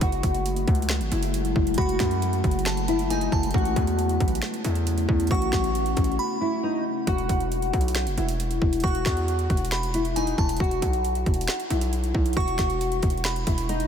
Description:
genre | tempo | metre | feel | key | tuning
hip hop, trap | 136 BPM | 4/4 | half-time | E major | A4 = 441 Hz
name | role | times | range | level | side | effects
nylon-string guitar | melody | 0.0-13.9 s | D#4 to F#4 | -27 LUFS | left 2 dB | analog chorus, low-pass filter, ping-pong delay
glassy FM pad | sustained chords | 0.0-7.1 s | C#3 to C#4 | -31 LUFS | left 2 dB | ensemble chorus, built-in reverb
distorted 808-style bass | bass | 0.0-13.9 s | E1 to F#2 | -27 LUFS | equal | distortion
trap drum kit | drums | 0.0-13.9 s | finger snaps, hi-hat, kick drum, snare drum | -27 LUFS | equal | none
delicate synth tine bell | second line | 1.8-13.9 s | G#5 to C#6 | -34 LUFS | right 3 dB | chorus, ping-pong delay
room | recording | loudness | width
moderate huge ambient reverb, RT60 7.9 s | dreamy mix soaked in reverb | -22 LUFS | side -8 dB against mid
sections
0.0-7.1 A section; 7.1-13.9 A section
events
break 6.2-7.1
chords
0.0 F#madd9; 3.5 Aadd9; 7.1 E5

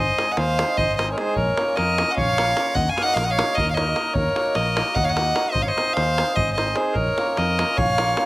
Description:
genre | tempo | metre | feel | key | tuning
balkan folk, Balkan wedding band | 300 BPM (eighths) | 7/8 | straight | Ab mixolydian | A4 = 441 Hz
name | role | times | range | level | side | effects
rich violin | melody | 0.0-8.3 s | C5 to Ab5 | -22 LUFS | equal | none
accordion | second line | 0.0-8.3 s | Ab4 to F5 | -26 LUFS | equal | slapback echo
fingered electric bass | bass | 0.0-8.1 s | Ab1 to F2 | -26 LUFS | equal | none
hammered dulcimer | accompaniment | 0.2-8.3 s | Ab3 to C5 | -28 LUFS | right 2 dB | slapback echo
davul | percussion | 0.2-8.3 s | none | -27 LUFS | equal | none
room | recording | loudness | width
light reverb | recorded outdoors, with no room sound | -18 LUFS | side -20 dB against mid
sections
0.0-8.3 A section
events
none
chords
0.0 Ab; 1.4 Bbm; 2.8 Ebm; 5.6 Ab; 7.0 Bbm

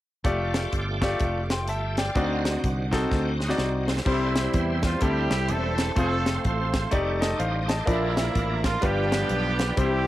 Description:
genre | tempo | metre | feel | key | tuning
uptempo gospel | 126 BPM | 4/4 | swing 62% on 8ths | F major | A4 = 440 Hz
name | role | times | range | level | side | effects
bright grand piano | accompaniment | 0.2-10.1 s | G2 to C6 | -27 LUFS | left 2 dB | none
bright tonewheel organ | sustained chords | 0.2-10.1 s | E3 to G5 | -32 LUFS | right 2 dB | slow rotary speaker, chorus vibrato
fingered electric bass | bass | 0.2-10.1 s | E1 to E2 | -28 LUFS | equal | none
tight funk drum kit | drums | 0.2-9.9 s | crash cymbal, hi-hat, kick drum, snare drum | -27 LUFS | equal | cassette tape
warm horn section | melody | 4.1-10.1 s | G3 to C5 | -29 LUFS | right 2 dB | analog delay
room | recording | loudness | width
light reverb | home recording on cassette | -22 LUFS | side -14 dB against mid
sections
0.2-4.1 A section; 4.1-10.1 B section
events
drum fill 3.1-4.1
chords
0.2 F69; 2.2 D7b9; 4.1 C; 6.0 F; 6.9 F13; 7.9 Bb; 8.8 G7

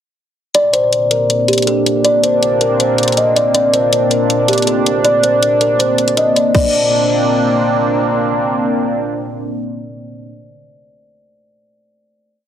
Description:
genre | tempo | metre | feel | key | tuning
hip hop, trap | 160 BPM | 4/4 | half-time | Bb major | A4 = 441 Hz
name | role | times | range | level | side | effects
kalimba | melody | 0.5-7.6 s | G4 to Eb5 | -14 LUFS | equal | ping-pong delay
sweeping resonant pad | sustained chords | 0.5-10.3 s | Bb2 to D4 | -17 LUFS | right 1 dB | chorus
trap drum kit | drums | 0.5-6.6 s | crash cymbal, hi-hat, kick drum | -17 LUFS | left 2 dB | none
room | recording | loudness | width
moderate plate reverb, RT60 1.4 s, digital ambience | heavily compressed radio sound, multiband compression | -11 LUFS | side -9 dB against mid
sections
0.5-6.5 breakdown; 6.5-9.5 final chord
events
none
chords
0.5 Bbadd9

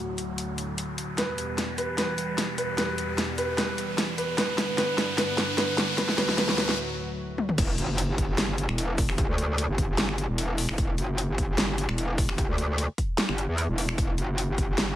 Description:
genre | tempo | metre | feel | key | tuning
heavy wobble dubstep | 150 BPM | 4/4 | swing 53% on 16ths, half-time | E minor | A4 = 440 Hz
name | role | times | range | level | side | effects
warm grand piano | melody | 0.0-6.8 s | B4 to F#5 | -31 LUFS | right 1 dB | tape echo
lush unison pad | sustained chords | 0.0-7.6 s | D2 to B3 | -33 LUFS | equal | chorus, sidechain pumping
riser and impact | sound effects | 0.0-9.2 s | none | -33 LUFS | equal | none
dubstep drum kit | drums | 0.2-14.9 s | crash cymbal, finger snaps, hi-hat, snare drum, toms | -28 LUFS | equal | none
metallic wobble bass | bass | 7.6-15.0 s | E1 to E2 | -27 LUFS | equal | distortion, chorus, overdrive
electronic kick drum | drums | 7.6-14.7 s | none | -27 LUFS | equal | none
room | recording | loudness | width
light reverb | none | -24 LUFS | side -12 dB against mid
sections
0.0-7.6 A section; 7.6-15.0 B section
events
build-up 0.0-7.6; riser 0.0-6.8; filter sweep on analog synth pad 0.0-7.6; drum fill 1.2-6.8, 7.4; break 6.8-7.6; drop 7.6-15.0; impact 7.6-9.2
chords
0.0 D; 1.2 Em; 4.4 G; 6.0 D; 7.6 Emadd9

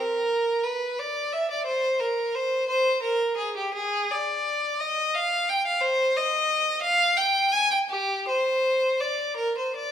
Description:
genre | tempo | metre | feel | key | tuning
classical, baroque-style suite movement for unaccompanied violin | 58 BPM (dotted quarters) | 6/8 | uneven beats, rubato | unclear | A4 = 440 Hz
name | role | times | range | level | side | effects
clear violin | solo | 0.0-9.9 s | G4 to Ab5 | -22 LUFS | equal | none
room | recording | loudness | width
moderate recital hall reverb, RT60 1.5 s | none | -22 LUFS | side -9 dB against mid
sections
0.0-9.9 A section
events
none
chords
none

